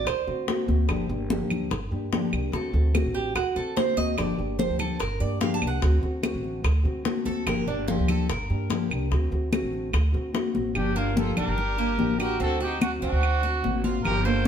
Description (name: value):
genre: latin, Cuban son and guajira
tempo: 146 BPM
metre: 4/4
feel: straight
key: G minor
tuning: A4 = 440 Hz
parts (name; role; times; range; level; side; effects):
- nylon-string guitar; accompaniment; 0.0-14.5 s; D3 to G4; -30 LUFS; left 2 dB; none
- Cuban tres; arpeggios; 0.0-14.5 s; Bb3 to A5; -30 LUFS; right 8 dB; none
- upright bass; bass; 0.0-14.5 s; G1 to D3; -27 LUFS; right 1 dB; none
- bongos; percussion; 0.1-10.8 s; none; -35 LUFS; left 4 dB; none
- claves; percussion; 0.1-14.3 s; none; -36 LUFS; right 2 dB; none
- congas; percussion; 0.1-14.5 s; none; -30 LUFS; left 4 dB; none
- breathy trumpet; melody; 10.8-14.5 s; F4 to C5; -29 LUFS; right 2 dB; none
- warm studio violin section; second line; 10.8-14.5 s; D4 to A4; -36 LUFS; left 2 dB; none
room: moderate stone room reverb, RT60 1.2 s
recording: band playing live in one room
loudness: -23 LUFS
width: side -8 dB against mid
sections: 0.0-10.8 A section; 10.8-14.5 B section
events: Cuban tres solo 0.0-10.8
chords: 0.0 D7; 0.9 Gm7; 2.5 D7; 4.2 Gm7; 5.8 D7; 7.5 Gm7; 9.1 D7; 10.8 Gm7; 12.4 D7